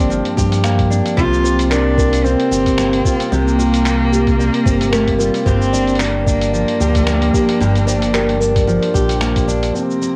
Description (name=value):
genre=folktronica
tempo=112 BPM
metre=4/4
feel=swing 56% on 16ths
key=unclear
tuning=A4 = 440 Hz
part: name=dark cello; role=melody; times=0.0-10.2 s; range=G3 to F4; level=-22 LUFS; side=equal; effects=cassette tape
part: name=picked steel-string acoustic guitar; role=arpeggios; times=0.0-10.2 s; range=G2 to G4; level=-20 LUFS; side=equal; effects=low-pass filter, cassette tape
part: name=round analog bass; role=bass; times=0.0-9.7 s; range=G1 to G2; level=-22 LUFS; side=equal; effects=none
part: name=lo-fi sampler-style drum kit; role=drums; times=0.1-10.1 s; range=finger snaps, hi-hat, shaker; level=-28 LUFS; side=equal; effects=none
part: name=electronic kick drum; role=drums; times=0.4-9.5 s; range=none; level=-21 LUFS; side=equal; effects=none
part: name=music box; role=second line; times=0.6-9.2 s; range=C4 to F5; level=-25 LUFS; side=equal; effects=cassette tape, analog delay
part: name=twinkling granular texture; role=texture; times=9.9-10.2 s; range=Bb6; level=-43 LUFS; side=equal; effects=built-in reverb, cassette tape
room=digital ambience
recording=home recording on cassette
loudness=-15 LUFS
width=mono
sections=0.0-9.7 A section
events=none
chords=0.0 Gm7; 1.2 C7sus4; 5.5 Gm7